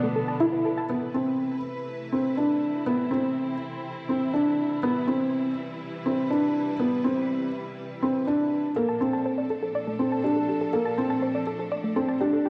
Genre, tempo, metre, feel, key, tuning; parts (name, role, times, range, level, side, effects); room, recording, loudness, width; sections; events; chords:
piano and strings electronica; 122 BPM; 4/4; straight; A minor; A4 = 441 Hz
rich symphonic string section; sustained chords; 0.0-12.5 s; Bb2 to B4; -37 LUFS; equal; cassette tape
soft round pluck; arpeggios; 0.0-0.8, 8.8-12.5 s; A3 to A5; -32 LUFS; equal; chorus, cassette tape, analog delay
felt-muted upright piano; riff; 0.0-12.5 s; Bb3 to E4; -27 LUFS; equal; cassette tape, analog delay
dark studio cello section; bass; 0.0-0.9 s; B2; -40 LUFS; equal
moderate spring reverb, RT60 1.5 s, small room ambience; home recording on cassette; -26 LUFS; mono
0.9-12.5 A section
0.0 Bm7b5; 0.9 Amadd9; 4.8 Cmaj7; 8.8 Bbmaj7